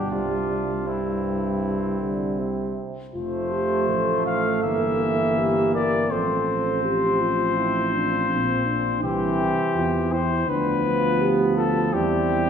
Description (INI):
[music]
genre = classical, brass quintet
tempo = 82 BPM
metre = 4/4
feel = straight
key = C major, F major from 3.1 s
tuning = A4 = 440 Hz
[part]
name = mellow trumpet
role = melody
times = 0.0-12.5 s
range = E4 to F5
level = -25 LUFS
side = left 5 dB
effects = none
[part]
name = clear flugelhorn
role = second line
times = 0.0-12.5 s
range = A3 to D4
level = -30 LUFS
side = right 3 dB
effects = none
[part]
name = clear euphonium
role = accompaniment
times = 0.0-12.5 s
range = G2 to G3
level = -29 LUFS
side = right 3 dB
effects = none
[part]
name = dark French horn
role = accompaniment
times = 0.0-12.5 s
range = G3 to Bb4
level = -26 LUFS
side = equal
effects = none
[part]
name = dark tuba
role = bass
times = 0.0-12.5 s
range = F1 to E2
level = -28 LUFS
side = right 2 dB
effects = none
[sound]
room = wet scoring stage reverb, RT60 1.8 s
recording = heard from further back in the room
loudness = -20 LUFS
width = side -7 dB against mid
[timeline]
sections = 0.0-3.1 A section; 3.1-12.5 B section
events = none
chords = 0.1 C; 3.1 F; 4.6 Edim/G; 6.1 F/A; 9.0 C; 10.5 Bdim/D; 11.9 C/E